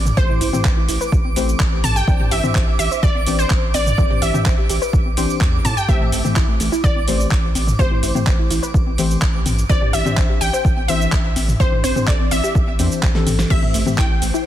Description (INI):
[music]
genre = progressive house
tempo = 126 BPM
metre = 4/4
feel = straight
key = A minor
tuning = A4 = 438 Hz
[part]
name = wide unison pluck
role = melody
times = 0.0-14.4 s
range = C5 to A5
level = -24 LUFS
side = equal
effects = digital delay
[part]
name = soft round pluck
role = arpeggios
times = 0.0-14.5 s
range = A3 to D5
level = -26 LUFS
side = right 1 dB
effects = analog chorus, sidechain pumping, digital delay
[part]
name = saturated sub bass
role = bass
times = 0.0-14.3 s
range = A1 to A2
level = -23 LUFS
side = equal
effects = sidechain pumping
[part]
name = twinkling granular texture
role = texture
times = 0.0-14.5 s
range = C5 to D6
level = -32 LUFS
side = right 6 dB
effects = built-in reverb, sidechain pumping
[part]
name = pop drum kit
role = drums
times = 0.1-14.4 s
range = crash cymbal, handclaps, hi-hat, shaker, snare drum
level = -25 LUFS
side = right 1 dB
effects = sidechain pumping on hats, sidechain pumping on perc, soft clipping on snare, sidechain pumping on cymbals
[part]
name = electronic toms and congas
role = percussion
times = 0.1-14.0 s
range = none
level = -24 LUFS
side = left 2 dB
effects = sidechain pumping on toms, sidechain pumping on perc
[part]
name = deep mellow chord stab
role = stabs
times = 0.2-14.5 s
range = E3 to C5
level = -25 LUFS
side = left 4 dB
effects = chorus, sidechain pumping, digital delay
[part]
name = electronic kick drum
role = drums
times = 0.2-14.1 s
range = none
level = -18 LUFS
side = equal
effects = none
[sound]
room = digital ambience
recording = dense, heavily limited modern master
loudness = -15 LUFS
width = side -12 dB against mid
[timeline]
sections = 0.0-14.5 A section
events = drum fill 13.1-13.5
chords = 0.0 Am7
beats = | 0.17 0.65 1.12 1.60 | 2.08 2.55 3.03 3.50 | 3.98 4.46 4.93 5.41 | 5.89 6.36 6.84 7.32 | 7.79 8.27 8.74 9.22 | 9.70 10.17 10.65 11.12 | 11.60 12.08 12.55 13.03 | 13.51 13.98 14.46